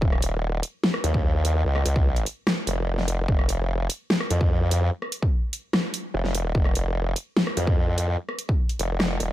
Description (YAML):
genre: heavy wobble dubstep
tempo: 147 BPM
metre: 4/4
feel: half-time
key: unclear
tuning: A4 = 439 Hz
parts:
  - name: formant-sweep wobble bass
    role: bass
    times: 0.0-9.3 s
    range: Eb1 to F2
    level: -23 LUFS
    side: equal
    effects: chorus, overdrive
  - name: electronic kick drum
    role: drums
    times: 0.0-8.6 s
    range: none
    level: -22 LUFS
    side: equal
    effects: none
  - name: dubstep drum kit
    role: drums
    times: 0.1-9.3 s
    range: hi-hat, rim click, snare drum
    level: -26 LUFS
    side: equal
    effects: overdrive
room: little or no reverb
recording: none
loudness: -22 LUFS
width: side -14 dB against mid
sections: 0.0-9.3 A section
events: none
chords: none